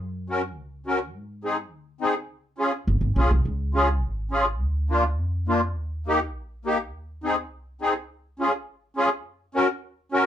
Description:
alpine folk, alpine dance band; 104 BPM; 2/4; straight; Db major; A4 = 440 Hz
upright bass; bass; 0.0-10.3 s; Ab1 to Ab2; -26 LUFS; equal
musette accordion; accompaniment; 0.3-10.3 s; Bb3 to Bb4; -22 LUFS; left 1 dB
light reverb; dark, warm production; -23 LUFS; side -10 dB against mid
0.0-3.5 A section; 3.5-10.3 A section
0.0 Gb; 1.1 Ab; 2.3 Db; 4.6 Bb/D; 5.8 Eb; 6.9 Ab/Eb; 8.1 Db; 9.2 Gb

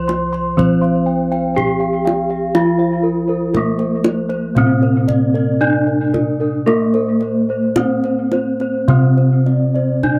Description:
Javanese gamelan; 51-61 BPM; 4/4; straight; C slendro; A4 = 440 Hz
gamelan-type bronze metallophone; melody; 0.0-10.2 s; Bb3-45c to C5; -21 LUFS; equal; tape echo
gamelan-type bronze metallophone; accompaniment; 0.0-10.2 s; C3 to C4; -23 LUFS; equal
gamelan-type bossed gongs; arpeggios; 0.0-10.2 s; Bb4-45c to C6; -27 LUFS; equal
gamelan-type bronze metallophone; arpeggios; 0.0-10.2 s; Bb4-45c to C6; -28 LUFS; equal
gamelan-type bossed gongs; bass; 0.0-10.2 s; C2 to Bb4-45c; -22 LUFS; equal
kendang; percussion; 0.1-10.2 s; -24 LUFS; equal
light reverb; dry, close 1970s-style studio recording; -16 LUFS; mono
0.0-10.2 A section

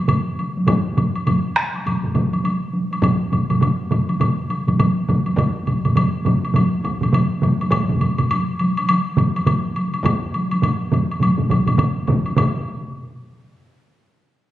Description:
japanese traditional, taiko drum ensemble; 103 BPM; 4/4; swing 60% on 16ths
solo taiko drums; percussion; 0.1-12.9 s; -21 LUFS; right 2 dB
taiko ensemble; percussion; 0.1-12.6 s; -22 LUFS; equal
taiko ensemble; percussion; 0.1-12.9 s; -26 LUFS; left 2 dB
woodblock; percussion; 0.1-12.6 s; -26 LUFS; left 2 dB
taiko ensemble; percussion; 0.7-12.6 s; -28 LUFS; right 1 dB
wet recital hall reverb, RT60 1.3 s; recorded on a phone in the room, club reverb, compression; -17 LUFS; side -13 dB against mid
0.0-12.4 A section; 12.4-14.5 B section

